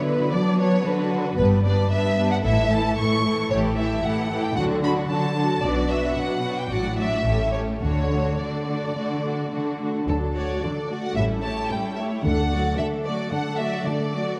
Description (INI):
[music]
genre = quick classical-period movement for string orchestra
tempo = 111 BPM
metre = 4/4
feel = straight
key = D major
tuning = A4 = 440 Hz
[part]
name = rich studio violin section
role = melody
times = 0.0-14.4 s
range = A4 to C#6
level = -30 LUFS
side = equal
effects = none
[part]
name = clear studio violin section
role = second line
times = 0.0-14.4 s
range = D4 to D5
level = -32 LUFS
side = equal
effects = none
[part]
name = warm studio viola section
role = accompaniment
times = 0.0-14.4 s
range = E3 to F#4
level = -30 LUFS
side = equal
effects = none
[part]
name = warm chamber cello section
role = bass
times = 0.0-14.3 s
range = G2 to F#3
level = -28 LUFS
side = equal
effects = none
[part]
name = clear chamber double bass section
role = bass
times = 1.4-12.7 s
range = G1 to D2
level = -30 LUFS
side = equal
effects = none
[sound]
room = wet scoring stage reverb, RT60 1.6 s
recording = dark, warm production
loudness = -23 LUFS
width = mono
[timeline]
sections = 0.0-10.1 A section; 10.1-14.4 A section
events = none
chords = 0.0 Bm; 1.4 G; 2.4 A; 4.6 D; 5.6 Bm; 6.7 D/A; 7.3 A7; 7.8 D; 11.2 A7; 12.2 D